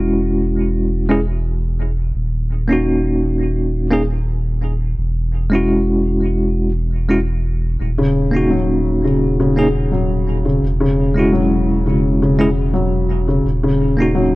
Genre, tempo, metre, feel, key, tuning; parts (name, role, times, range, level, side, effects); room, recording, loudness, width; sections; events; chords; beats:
trip hop; 85 BPM; 4/4; swing 53% on 16ths; A4 = 440 Hz
bell-like tine electric piano; accompaniment; 0.0-14.4 s; G#3 to G#4; -18 LUFS; equal; tremolo, low-pass filter, tape echo
warm sub bass; bass; 0.0-14.4 s; Eb1 to E1; -19 LUFS; equal
felt-muted upright piano; arpeggios; 8.0-14.4 s; Db3 to Gb3; -17 LUFS; left 2 dB; ping-pong delay
digital ambience; worn, warbling old tape, cassette tape, warbly pitch drift; -15 LUFS; side -19 dB against mid
0.0-14.4 A section
0.0 E69; 2.1 Ebm7; 5.0 E69; 7.8 Ebm7; 10.6 E69; 13.4 Ebm7
0.03 0.74 1.44 | 2.15 2.85 3.56 4.27 | 4.97 5.68 6.38 7.09 | 7.80 8.50 9.21 9.91 | 10.62 11.33 12.03 12.74 | 13.44 14.15